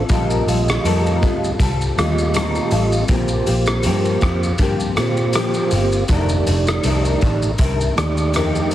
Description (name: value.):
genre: indie pop, bedroom pop.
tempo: 80 BPM.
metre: 4/4.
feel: swing 55% on 16ths.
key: unclear.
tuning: A4 = 440 Hz.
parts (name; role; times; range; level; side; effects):
mellow tonewheel organ; accompaniment; 0.0-8.7 s; A3 to G5; -22 LUFS; right 5 dB; fast rotary speaker, cassette tape.
nylon-string guitar; accompaniment; 0.0-8.7 s; F2 to A4; -22 LUFS; left 5 dB; ensemble chorus, vibrato effect.
vintage muted picked electric bass; bass; 0.1-8.6 s; F1 to Bb2; -20 LUFS; equal; none.
raw garage drum kit; drums; 0.1-8.7 s; hi-hat, kick drum, rim click, shaker; -21 LUFS; equal; none.
room: light reverb.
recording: heavily compressed radio sound.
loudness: -15 LUFS.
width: side -12 dB against mid.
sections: 0.0-8.7 A section.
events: none.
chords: 0.1 F9/Bb; 3.1 C7sus4/Bb; 6.1 F13.